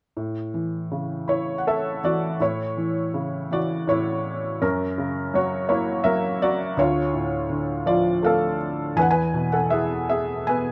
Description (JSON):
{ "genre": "classical, lyrical solo piano", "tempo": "81 BPM", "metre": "3/4", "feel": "rubato", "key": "A major", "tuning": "A4 = 441 Hz", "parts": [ { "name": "felt-muted upright piano", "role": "solo", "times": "0.2-10.7 s", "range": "D2 to G#5", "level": "-24 LUFS", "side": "equal", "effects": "none" } ], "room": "moderate small room reverb, RT60 0.5 s", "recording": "close, detailed microphones", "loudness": "-24 LUFS", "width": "mono", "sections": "0.2-2.4 A section; 2.4-10.7 B section", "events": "none", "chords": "0.2 A; 4.6 F#; 6.8 Dm; 9.0 E" }